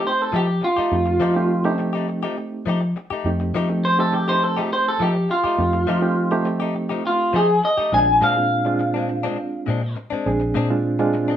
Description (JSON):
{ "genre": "blues", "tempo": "103 BPM", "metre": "4/4", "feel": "straight", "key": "F mixolydian", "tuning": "A4 = 441 Hz", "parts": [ { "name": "electric guitar through a small old amp", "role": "melody", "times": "0.0-9.9 s", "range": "F4 to Ab5", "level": "-19 LUFS", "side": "equal", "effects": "none" }, { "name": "reed electric piano", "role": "accompaniment", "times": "0.0-11.4 s", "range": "Ab3 to Ab4", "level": "-24 LUFS", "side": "right 3 dB", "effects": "fast tremolo" }, { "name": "direct-recorded clean electric guitar", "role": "stabs", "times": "0.0-11.4 s", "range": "Bb2 to G4", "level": "-27 LUFS", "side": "left 5 dB", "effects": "none" }, { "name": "fingered electric bass", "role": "bass", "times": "0.3-11.4 s", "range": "Bb1 to F3", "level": "-24 LUFS", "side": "left 1 dB", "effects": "none" } ], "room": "moderate large studio reverb, RT60 0.8 s", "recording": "band playing live in one room", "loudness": "-18 LUFS", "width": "side -10 dB against mid", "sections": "0.0-11.4 A section", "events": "clean electric guitar solo 0.0-11.4", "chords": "0.0 F9; 7.9 Bb9", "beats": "0.34 | 0.92 1.50 2.09 2.67 | 3.25 3.84 4.42 5.00 | 5.59 6.17 6.76 7.34 | 7.92 8.51 9.09 9.68 | 10.26 10.85" }